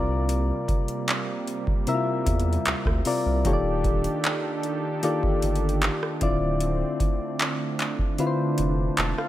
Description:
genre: contemporary R&B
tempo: 76 BPM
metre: 4/4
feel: straight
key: D minor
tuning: A4 = 439 Hz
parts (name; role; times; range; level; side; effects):
- soft electric-piano-like synth keys; accompaniment; 0.0-9.3 s; C3 to A5; -26 LUFS; left 3 dB; chorus
- warm analog pad; sustained chords; 0.0-9.3 s; C3 to A4; -31 LUFS; right 4 dB; lush chorus, sidechain pumping
- saturated sub bass; bass; 0.0-9.1 s; D1 to E2; -26 LUFS; equal; none
- booming analog drum machine; drums; 0.3-9.3 s; handclaps, hi-hat, kick drum, rim click; -26 LUFS; equal; none
room: digital ambience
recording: none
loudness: -22 LUFS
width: side -13 dB against mid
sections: 0.0-9.3 A section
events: kick muted 8.2-9.3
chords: 0.0 C7sus4; 3.4 Ebmaj9#11; 6.2 Dm7

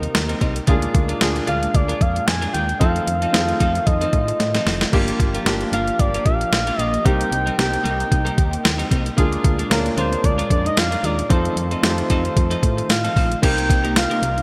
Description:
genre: 1980s-style pop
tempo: 113 BPM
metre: 4/4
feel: swing 55% on 16ths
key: C minor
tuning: A4 = 436 Hz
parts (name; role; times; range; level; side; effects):
- expressive synth lead; melody; 0.0-14.4 s; Bb4 to Ab5; -26 LUFS; equal; chorus
- warm grand piano; accompaniment; 0.0-14.4 s; Bb3 to Bb4; -28 LUFS; equal; none
- warm analog pad; sustained chords; 0.0-14.4 s; Bb2 to G4; -33 LUFS; equal; none
- twelve-string electric guitar; riff; 0.0-14.4 s; F3 to Bb4; -31 LUFS; equal; lush chorus
- solid FM bass; bass; 0.0-14.4 s; F1 to A2; -27 LUFS; equal; none
- clean 12-bit digital drum machine; drums; 0.0-14.4 s; crash cymbal, hi-hat, kick drum, snare drum, tambourine; -22 LUFS; equal; overdrive, gated reverb
- buzzing marimba with soft mallets; second line; 3.9-14.4 s; C4 to G4; -37 LUFS; equal; none
room: moderate lush hall reverb, RT60 2.7 s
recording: bright 1980s-style digital production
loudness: -19 LUFS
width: mono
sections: 0.0-13.4 A section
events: drum fill 4.4-4.9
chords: 0.0 Cm7; 0.7 Bb7/D; 2.8 F7; 4.9 Gm7; 7.1 Cm7; 9.2 Bb7/D; 11.3 F7; 13.4 Cm7

